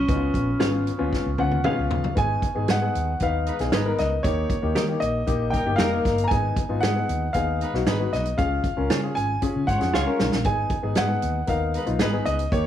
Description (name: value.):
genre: uptempo 1960s-style soul.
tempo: 116 BPM.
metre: 4/4.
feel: straight.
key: unclear.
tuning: A4 = 440 Hz.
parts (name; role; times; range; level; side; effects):
clear concert grand piano; melody; 0.0-12.7 s; Db4 to Bb5; -27 LUFS; equal; none.
glockenspiel with soft plastic mallets; second line; 0.0-0.8 s; Db6; -39 LUFS; right 3 dB; none.
warm concert grand piano; accompaniment; 0.1-12.7 s; Bb3 to Cb5; -27 LUFS; left 4 dB; none.
vintage muted fingered electric bass; bass; 0.1-12.7 s; F1 to Eb3; -27 LUFS; equal; tube saturation.
natural country drum kit; drums; 0.1-12.6 s; hi-hat, kick drum, snare drum, toms; -27 LUFS; right 1 dB; none.
clean electric guitar; stabs; 0.6-12.1 s; F4 to F5; -31 LUFS; right 5 dB; none.
warm horn section; second line; 3.5-12.4 s; G3 to Db5; -32 LUFS; right 1 dB; none.
room: light reverb, small room ambience.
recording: none.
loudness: -21 LUFS.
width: side -10 dB against mid.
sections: 0.0-2.2 A section; 2.2-12.7 B section.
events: drum fill 1.1-2.2, 9.9-10.5.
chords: 0.0 Db7; 2.2 Abm; 4.2 Eb; 6.3 Abm; 8.4 Db; 10.5 Abm.